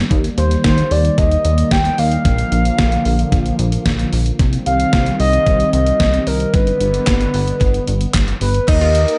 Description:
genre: synth-pop.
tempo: 112 BPM.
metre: 4/4.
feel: straight.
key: Eb major.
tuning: A4 = 440 Hz.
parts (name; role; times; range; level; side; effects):
warm analog pad; sustained chords; 0.0-8.7 s; D3 to C4; -24 LUFS; equal; chorus.
chorused synth bass; bass; 0.0-9.1 s; G1 to Eb2; -20 LUFS; equal; none.
gated 80s digital drum machine; drums; 0.1-9.2 s; crash cymbal, handclaps, hi-hat, kick drum, snare drum; -20 LUFS; equal; gated reverb, gated reverb snare, overdrive, tape echo.
hollow clarinet-like synth lead; melody; 0.4-9.2 s; Bb4 to G5; -21 LUFS; equal; chorus, phaser, tape echo.
mellow synth brass; accompaniment; 8.7-9.2 s; Bb3 to Bb4; -23 LUFS; equal; chorus, tape echo.
analog pluck; arpeggios; 8.7-9.0 s; Eb4 to F4; -30 LUFS; equal; chorus, tape echo.
room: moderate spring reverb, RT60 1.4 s.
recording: echo-heavy mix, nothing above 10.9 kHz.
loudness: -15 LUFS.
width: mono.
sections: 0.0-8.7 A section.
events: none.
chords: 0.1 Eb; 2.3 Bb; 4.4 Cm; 6.5 G; 8.7 Eb.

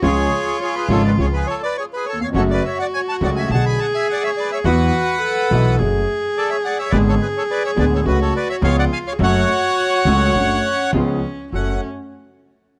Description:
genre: tango.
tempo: 104 BPM.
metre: 4/4.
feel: rubato.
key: F# minor.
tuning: A4 = 440 Hz.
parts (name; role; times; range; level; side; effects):
bandoneon; melody; 0.0-11.8 s; F#4 to B5; -23 LUFS; equal; none.
warm cello; second line; 0.0-11.8 s; C#4 to A4; -26 LUFS; equal; none.
warm concert grand piano; accompaniment; 0.0-11.8 s; D1 to A4; -24 LUFS; equal; none.
dark chamber string section; stabs; 0.0-11.8 s; G#3 to G#4; -29 LUFS; equal; none.
upright bass; bass; 0.0-11.8 s; F#1 to E2; -22 LUFS; equal; none.
room: small room ambience.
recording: dry, close 1970s-style studio recording.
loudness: -18 LUFS.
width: mono.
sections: 0.0-11.5 A section; 11.5-12.8 B section.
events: none.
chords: 0.0 C#; 2.3 F#m; 3.5 Bm; 4.6 Esus2; 5.8 F#madd9; 6.9 G#dim; 8.1 F#m/C#; 8.6 C#7; 9.2 F#m; 10.9 C#7; 11.5 F#m.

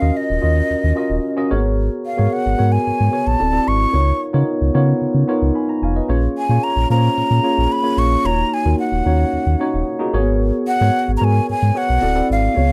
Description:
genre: polished 1980s jazz-funk pop.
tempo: 111 BPM.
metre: 4/4.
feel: straight.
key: Eb minor.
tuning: A4 = 440 Hz.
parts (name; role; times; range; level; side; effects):
breathy hollow jazz flute; melody; 0.0-12.7 s; Eb5 to Db6; -22 LUFS; equal; none.
mellow tine electric piano; accompaniment; 0.0-12.7 s; Bb3 to Cb6; -22 LUFS; equal; lush chorus.
sub bass with octave; bass; 0.0-12.7 s; D1 to Db3; -19 LUFS; equal; none.
room: light reverb.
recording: dry, close 1970s-style studio recording.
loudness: -17 LUFS.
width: mono.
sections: 0.0-12.7 A section.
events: none.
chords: 0.0 Ebm9; 1.5 Abm11; 3.4 D9; 3.9 Db13; 6.1 Bbm7; 8.2 Ebm9; 10.1 Abm11; 12.0 D9.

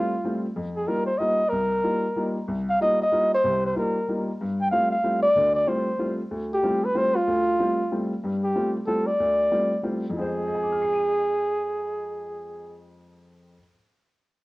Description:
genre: jazz.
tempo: 188 BPM.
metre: 3/4.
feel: swing 61% on 8ths.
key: F dorian.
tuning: A4 = 440 Hz.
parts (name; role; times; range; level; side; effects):
trumpet with bucket mute; melody; 0.0-12.8 s; F4 to G5; -22 LUFS; equal; none.
warm upright piano; accompaniment; 0.0-13.8 s; C2 to Eb7; -28 LUFS; left 1 dB; none.
room: light reverb.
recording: worn, warbling old tape, cassette tape, warbly pitch drift.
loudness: -22 LUFS.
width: side -20 dB against mid.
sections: 0.0-8.2 A section; 8.2-10.1 B section; 10.1-12.1 C section.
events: none.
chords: 0.0 G9sus4; 0.6 F9sus4; 4.4 G9sus4; 10.1 Fm.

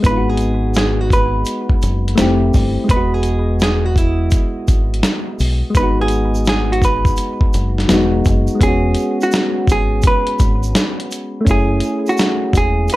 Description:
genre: lo-fi hip hop.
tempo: 84 BPM.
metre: 4/4.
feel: swing 65% on 16ths.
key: E major.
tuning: A4 = 440 Hz.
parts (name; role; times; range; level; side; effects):
soft electric-piano-like synth keys; accompaniment; 0.0-13.0 s; F#3 to D#5; -20 LUFS; left 1 dB; chorus, cassette tape.
deep dub fingered electric bass; bass; 0.0-12.9 s; E1 to B1; -18 LUFS; equal; none.
dusty soul sampler-style drum kit; drums; 0.0-13.0 s; hi-hat, kick drum, snare drum; -16 LUFS; equal; none.
egg shaker; percussion; 0.0-13.0 s; none; -35 LUFS; right 5 dB; none.
vintage hollow-body jazz guitar; melody; 0.1-13.0 s; E4 to B4; -20 LUFS; right 1 dB; plate reverb.
room: light reverb.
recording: cassette tape.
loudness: -13 LUFS.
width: side -17 dB against mid.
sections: 0.0-8.6 A section; 8.6-13.0 B section.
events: none.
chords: 0.0 G#m7; 2.2 Fmaj7; 2.9 Emaj7; 5.8 G#m7; 7.9 Emaj7; 8.6 E69 (rootless); 11.5 F#m9.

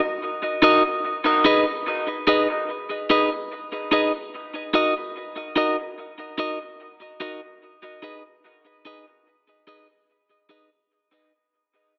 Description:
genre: reggae.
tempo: 73 BPM.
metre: 4/4.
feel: straight.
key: unclear.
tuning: A4 = 438 Hz.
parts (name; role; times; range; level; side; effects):
clean electric guitar; accompaniment; 0.6-10.7 s; Eb4 to Eb5; -23 LUFS; equal; dub echo.
room: wet plate reverb, RT60 2.5 s.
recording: echo-heavy mix, AM radio sound.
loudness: -22 LUFS.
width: mono.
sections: 0.0-10.9 A section.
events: fade-out 0.0-10.9.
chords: 0.0 Ebm; 1.0 Abm; 4.3 Ebm; 7.6 Abm.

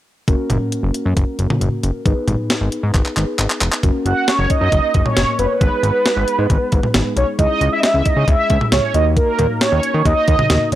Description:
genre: synth-pop.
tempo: 135 BPM.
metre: 4/4.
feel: straight.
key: unclear.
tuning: A4 = 440 Hz.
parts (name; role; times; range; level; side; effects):
muted felt-like synth keys; accompaniment; 0.3-10.8 s; G#3 to B4; -25 LUFS; left 1 dB; chorus.
fat analog bass; bass; 0.3-10.8 s; E1 to D#3; -18 LUFS; equal; none.
clean 12-bit digital drum machine; drums; 0.3-10.8 s; handclaps, hi-hat, kick drum, snare drum, toms; -18 LUFS; equal; overdrive.
mellow synth brass; melody; 4.1-10.8 s; A#4 to F#5; -17 LUFS; right 2 dB; chorus.
room: little or no reverb.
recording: dry, gritty hardware recording.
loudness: -14 LUFS.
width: side -13 dB against mid.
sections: 0.3-3.8 A section; 3.8-10.8 B section.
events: drum fill 2.9-3.8.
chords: 0.3 F#; 2.1 G#m; 3.8 F#; 5.6 G#m; 7.4 C#m; 8.9 D#m.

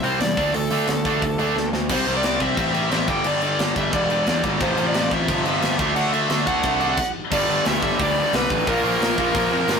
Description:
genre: punk rock.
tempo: 177 BPM.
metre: 4/4.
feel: straight.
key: unclear.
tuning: A4 = 440 Hz.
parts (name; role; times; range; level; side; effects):
dark smooth lead guitar; melody; 0.0-9.8 s; A4 to G5; -25 LUFS; equal; overdrive.
distorted electric guitar; riff; 0.0-9.8 s; F2 to D4; -25 LUFS; right 5 dB; distortion.
tight distorted guitar; riff; 0.0-9.8 s; F2 to D4; -26 LUFS; left 7 dB; distortion.
fuzz picked electric bass; bass; 0.0-9.8 s; E1 to F2; -27 LUFS; equal; overdrive.
tight metal drum kit; drums; 0.0-9.8 s; crash cymbal, hi-hat, kick drum, snare drum; -26 LUFS; left 1 dB; none.
distorted electric guitar; riff; 4.6-9.8 s; F2 to D4; -27 LUFS; right 1 dB; overdrive.
room: light reverb.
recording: rough rehearsal-room recording, warm saturation.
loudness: -18 LUFS.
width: side -6 dB against mid.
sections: 0.0-1.9 A section; 1.9-7.3 B section; 7.3-9.8 C section.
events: drum fill 1.6-1.9; stop 7.0-7.3.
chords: 0.4 D5; 1.9 C; 3.1 G5; 4.6 F/A; 5.8 D; 7.3 G; 8.7 Bb5.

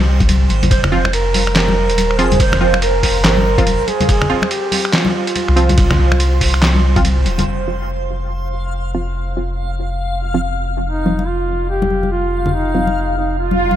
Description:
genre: deep dubstep.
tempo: 142 BPM.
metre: 4/4.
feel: swing 61% on 16ths, half-time.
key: F minor.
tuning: A4 = 443 Hz.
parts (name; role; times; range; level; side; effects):
soft dub sub bass; bass; 0.0-13.8 s; Eb1 to C2; -18 LUFS; equal; none.
backwards swelling texture; texture; 0.0-13.8 s; C5 to F5; -24 LUFS; right 3 dB; built-in reverb.
electronic kick drum; drums; 0.2-7.0 s; none; -17 LUFS; equal; none.
trip hop sampler-style drum kit; drums; 0.2-7.5 s; finger snaps, handclaps, hi-hat, ride cymbal, snare drum; -19 LUFS; right 1 dB; low-pass filter on hats, low-pass filter on cymbals, low-pass filter on snare.
congas; percussion; 0.2-7.5, 11.1-13.8 s; none; -21 LUFS; left 3 dB; none.
dark duduk; melody; 0.7-7.0, 10.8-13.8 s; Eb4 to C5; -20 LUFS; right 2 dB; dub echo.
filtered dub chord stab; stabs; 0.9-13.7 s; F3 to F4; -24 LUFS; right 2 dB; chorus, dub echo.
swell; sound effects; 13.5-13.8 s; none; -17 LUFS; right 3 dB; none.
room: little or no reverb.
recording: none.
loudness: -13 LUFS.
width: side -11 dB against mid.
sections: 0.0-7.5 A section; 7.5-13.8 B section.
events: drop 0.0-7.5; swell 13.5.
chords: 0.0 F5.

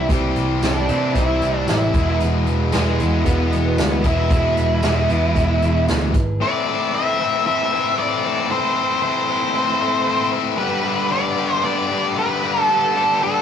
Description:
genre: classic rock.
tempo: 115 BPM.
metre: 4/4.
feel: straight.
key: A minor.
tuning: A4 = 435 Hz.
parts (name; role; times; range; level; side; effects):
octave-fuzz lead guitar; melody; 0.0-13.4 s; G#3 to E5; -21 LUFS; right 1 dB; distortion.
picked steel-string acoustic guitar; accompaniment; 0.0-6.4 s; C3 to C5; -30 LUFS; equal; none.
distorted electric guitar; riff; 0.0-13.4 s; E2 to A4; -22 LUFS; left 6 dB; overdrive.
overdriven electric guitar; riff; 0.0-6.1 s; E2 to E4; -24 LUFS; right 4 dB; phaser.
modern bright picked electric bass; bass; 0.0-6.4 s; E1 to C3; -21 LUFS; equal; none.
vintage drum kit; drums; 0.1-6.3 s; hi-hat, kick drum, snare drum, tambourine; -22 LUFS; right 1 dB; none.
mellow tonewheel organ; sustained chords; 6.4-13.4 s; G3 to C5; -29 LUFS; right 2 dB; chorus vibrato, slow rotary speaker.
room: moderate studio reverb, RT60 0.5 s.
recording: rough rehearsal-room recording.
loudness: -16 LUFS.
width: side -8 dB against mid.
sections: 0.0-6.4 A section; 6.4-13.4 B section.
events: none.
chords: 0.0 C; 1.9 E; 6.4 Am; 10.6 G.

